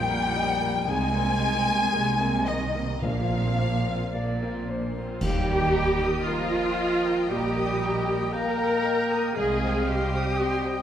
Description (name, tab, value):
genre	cinematic, emotional film score for orchestra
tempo	54-59 BPM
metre	4/4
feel	rubato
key	Eb major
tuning	A4 = 440 Hz
part	warm studio violin section	melody	0.0-10.8 s	Eb5 to Ab5	-32 LUFS	left 2 dB	none
part	bright concert flute	second line	0.0-10.8 s	Eb5 to Bb5	-33 LUFS	left 1 dB	none
part	dark studio violin section	second line	0.0-10.8 s	Eb5 to Eb6	-34 LUFS	left 3 dB	none
part	warm concert grand piano	accompaniment	0.0-10.8 s	Bb1 to Eb5	-34 LUFS	left 2 dB	none
part	warm studio viola section	accompaniment	0.0-10.8 s	F3 to Bb4	-30 LUFS	right 2 dB	none
part	mellow French horn section	sustained chords	0.0-10.8 s	Eb3 to Bb3	-31 LUFS	left 2 dB	none
part	warm studio cello section	bass	0.0-10.2 s	Bb2 to Eb3	-32 LUFS	right 3 dB	none
part	warm studio double bass section	bass	0.0-10.2 s	Bb1 to Eb2	-33 LUFS	right 2 dB	none
part	timpani	percussion	3.0-6.7 s	Bb2 to Eb3	-36 LUFS	left 1 dB	none
part	clear clarinet	second line	4.1-10.8 s	F4 to D5	-32 LUFS	left 1 dB	none
part	clash cymbals and concert bass drum	percussion	5.2-7.3 s	none	-34 LUFS	equal	none
part	clear oboe	second line	7.3-10.8 s	Eb5 to G5	-34 LUFS	right 1 dB	none
room	wet scoring stage reverb, RT60 1.7 s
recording	none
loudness	-23 LUFS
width	side -10 dB against mid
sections	0.0-5.2 A section; 5.2-10.8 B section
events	band accent 5.2-6.3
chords	0.0 Bbsus4; 0.9 Abadd9/C; 3.0 Bbadd9; 5.2 Ebadd9; 9.4 Cm